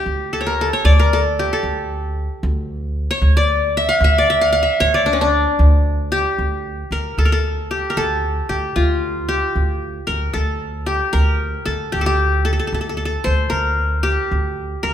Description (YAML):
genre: Arabic maqam ensemble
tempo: 76 BPM (dotted quarters)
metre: 6/8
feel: straight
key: D maqam suznak, D maqam bayati from 6.4 s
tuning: A4 = 438 Hz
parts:
  - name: qanun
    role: melody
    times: 0.0-14.9 s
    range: C#4 to F#5-50c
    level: -18 LUFS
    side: left 1 dB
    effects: none
  - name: upright bass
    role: bass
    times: 0.1-14.9 s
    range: D2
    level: -19 LUFS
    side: equal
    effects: none
room: light reverb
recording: minimal, uncompressed stereo recording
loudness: -16 LUFS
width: side -10 dB against mid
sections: 0.0-6.4 A section; 6.4-14.9 B section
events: none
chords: none